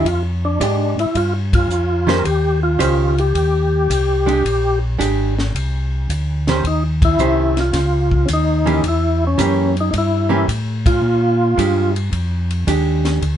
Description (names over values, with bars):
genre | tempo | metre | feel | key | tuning
soul jazz organ trio | 109 BPM | 4/4 | swing 69% on 8ths | unclear | A4 = 440 Hz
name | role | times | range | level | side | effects
percussive tonewheel organ | melody | 0.0-11.9 s | Db4 to Bb4 | -18 LUFS | left 1 dB | slow rotary speaker, overdrive, chorus vibrato
archtop guitar, miked and amplified | accompaniment | 0.0-13.2 s | Eb3 to C5 | -19 LUFS | right 4 dB | none
mellow tonewheel organ | bass | 0.0-13.4 s | Ab1 to Bb2 | -18 LUFS | equal | slow rotary speaker
compact cocktail drum kit | drums | 0.1-13.4 s | hi-hat, kick drum, ride cymbal, snare drum | -24 LUFS | left 1 dB | none
room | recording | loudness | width
moderate club reverb, RT60 0.5 s | nothing above 10.8 kHz | -15 LUFS | side -10 dB against mid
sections
0.0-13.4 A section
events
band accent 1.4, 6.9, 10.7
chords
0.0 Bb13 (rootless); 2.2 Eb6; 4.4 Bb13; 6.6 Eb13; 8.8 Edim7; 11.0 Bb6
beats
| 0.05 0.60 1.15 1.70 | 2.25 2.80 3.35 3.89 | 4.44 4.99 5.54 6.09 | 6.64 7.18 7.73 8.28 | 8.83 9.38 9.93 10.47 | 11.02 11.57 12.12 12.66 | 13.21